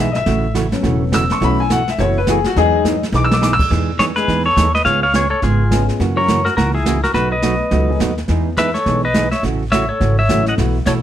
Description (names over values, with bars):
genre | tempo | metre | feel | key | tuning
country, western swing | 209 BPM | 4/4 | swing 60% on 8ths | E major | A4 = 440 Hz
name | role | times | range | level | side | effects
dark upright piano | accompaniment | 0.0-10.7 s | E3 to E6 | -19 LUFS | left 4 dB | none
hollow-body jazz guitar | accompaniment | 0.0-11.0 s | B2 to G#4 | -21 LUFS | right 6 dB | none
upright bass | bass | 0.0-11.0 s | E1 to F#2 | -19 LUFS | equal | none
jazz brush drum kit | drums | 0.1-11.0 s | brushed snare drum, crash cymbal, hi-hat, kick drum, snare drum | -22 LUFS | right 1 dB | none
clean lap steel guitar | melody | 4.0-10.9 s | E4 to F#5 | -17 LUFS | left 1 dB | none
room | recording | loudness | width
moderate studio reverb, RT60 0.9 s | none | -14 LUFS | side -11 dB against mid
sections
0.0-3.7 A section; 3.7-11.0 B section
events
upright piano solo 0.0-3.7; drum fill 3.1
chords
0.3 A6; 1.4 B7sus4; 2.6 Emaj9; 3.7 Emaj7; 4.9 C#7; 6.0 F#7; 7.1 B7; 8.3 Emaj7; 9.4 A6